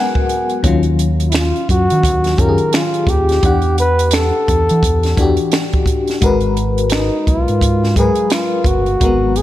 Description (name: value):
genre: R&B, neo-soul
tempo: 86 BPM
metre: 4/4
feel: swing 61% on 16ths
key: unclear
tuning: A4 = 440 Hz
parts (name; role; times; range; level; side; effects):
- FM electric piano with tremolo; accompaniment; 0.0-9.4 s; D#3 to G#5; -18 LUFS; left 4 dB; none
- compact cocktail drum kit; drums; 0.2-9.4 s; finger snaps, hi-hat, kick drum, snare drum; -18 LUFS; right 1 dB; none
- deep dub fingered electric bass; bass; 0.6-9.4 s; G1 to E3; -17 LUFS; right 1 dB; none
- trumpet with bucket mute; melody; 1.3-9.4 s; D#4 to B4; -18 LUFS; equal; none
room: light reverb, small room ambience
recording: none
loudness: -12 LUFS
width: side -14 dB against mid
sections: 0.0-9.4 A section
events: FM electric piano fill 0.0-0.6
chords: 0.0 G#m9; 0.6 D#m9; 3.4 Em9; 6.2 G#m9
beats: | 0.64 1.34 2.03 2.73 | 3.43 4.13 4.82 5.52 | 6.22 6.92 7.62 8.31 | 9.01